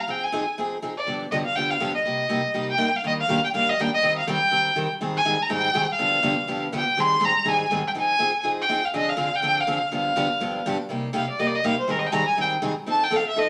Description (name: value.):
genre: jazz.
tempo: 244 BPM.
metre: 4/4.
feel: swing 57% on 8ths.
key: C minor.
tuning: A4 = 438 Hz.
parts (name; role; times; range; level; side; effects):
warm violin; melody; 0.0-13.5 s; Bb4 to C6; -24 LUFS; equal; none.
picked steel-string acoustic guitar; accompaniment; 0.1-13.5 s; G2 to Bb4; -29 LUFS; equal; none.
room: wet studio reverb, RT60 0.8 s.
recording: none.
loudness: -23 LUFS.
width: mono.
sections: 0.0-3.0 A section; 3.0-10.9 B section; 10.9-13.5 C section.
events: violin solo 10.9-13.5.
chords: 0.1 Fm7; 1.1 G7; 2.0 Cm7; 3.0 Ebmaj7; 4.0 Cm7/Eb; 5.0 Abmaj7; 6.0 G7; 7.0 Abmaj7; 8.0 Fm7; 8.9 Dm7b5; 9.9 G7; 10.9 Cm7; 11.9 Abmaj7; 12.9 F7.